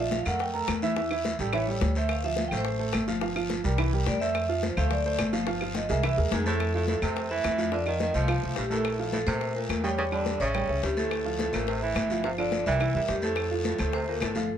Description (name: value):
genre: Afro-Cuban jazz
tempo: 213 BPM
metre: 4/4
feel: straight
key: F major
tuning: A4 = 440 Hz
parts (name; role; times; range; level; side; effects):
- vibraphone with medium mallets; melody; 0.0-14.5 s; G4 to Bb5; -30 LUFS; equal; plate reverb
- warm grand piano; accompaniment; 0.0-14.5 s; E3 to G5; -32 LUFS; right 4 dB; none
- upright bass; bass; 0.0-14.5 s; G1 to Bb2; -31 LUFS; equal; none
- bongos; percussion; 0.1-14.4 s; none; -38 LUFS; left 10 dB; none
- congas; percussion; 0.1-14.5 s; none; -34 LUFS; left 4 dB; none
- guiro; percussion; 0.1-14.5 s; none; -40 LUFS; left 4 dB; none
- claves; percussion; 0.3-14.4 s; none; -38 LUFS; equal; none
- clear baritone saxophone; second line; 6.3-14.5 s; G2 to F3; -34 LUFS; right 3 dB; none
room: moderate club reverb, RT60 0.5 s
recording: none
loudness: -25 LUFS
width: side -9 dB against mid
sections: 0.0-6.6 A section; 6.6-14.6 B section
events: vibraphone solo 0.0-6.6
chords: 0.0 Bb5; 1.0 Em; 1.5 A7; 2.1 Dm7; 3.2 Gm7; 3.8 C7; 4.3 Fmaj7; 4.9 D5; 5.5 Gm7; 6.0 C7alt; 6.6 Fmaj7; 7.7 F; 8.9 Bb5; 10.0 Em7; 10.5 A7; 11.1 Dm7; 12.2 Gm7; 12.8 C7; 13.4 F; 13.9 D5